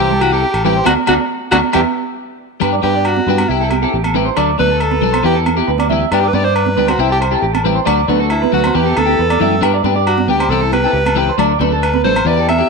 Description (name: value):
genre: highlife guitar band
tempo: 137 BPM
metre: 4/4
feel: straight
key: G major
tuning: A4 = 440 Hz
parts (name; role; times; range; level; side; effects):
- breathy alto saxophone; melody; 0.0-12.7 s; D4 to E5; -18 LUFS; left 1 dB; none
- clean electric guitar; accompaniment; 0.0-12.7 s; E3 to A4; -19 LUFS; left 13 dB; analog chorus
- electric guitar through a small old amp; arpeggios; 0.0-12.7 s; F#4 to E5; -19 LUFS; right 10 dB; slapback echo
- fingered electric bass; bass; 0.0-12.6 s; A1 to G2; -19 LUFS; left 1 dB; none
- congas; percussion; 0.1-12.6 s; none; -21 LUFS; right 14 dB; none
- agogo bells; percussion; 0.2-12.6 s; none; -21 LUFS; left 2 dB; none
room: moderate echo chamber reverb, RT60 1.7 s, studio ambience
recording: 1960s-style stereo with parts hard left and right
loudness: -12 LUFS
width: side -4 dB against mid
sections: 0.0-2.6 A section; 2.6-12.7 B section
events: band accent 0.9-2.6; alto saxophone solo 2.6-12.7; drum fill 9.2-9.6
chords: 0.0 C; 0.9 D; 1.7 N.C.; 2.6 G; 3.5 C; 4.4 D; 5.2 Em; 6.1 G; 7.0 C; 7.9 D; 8.8 Em; 9.6 G; 10.5 C; 11.4 D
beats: 0.43 | 0.86 1.30 1.74 2.18 | 2.62 3.05 3.49 3.93 | 4.37 4.81 5.25 5.68 | 6.12 6.56 7.00 7.44 | 7.88 8.31 8.75 9.19 | 9.63 10.07 10.51 10.95 | 11.38 11.82 12.26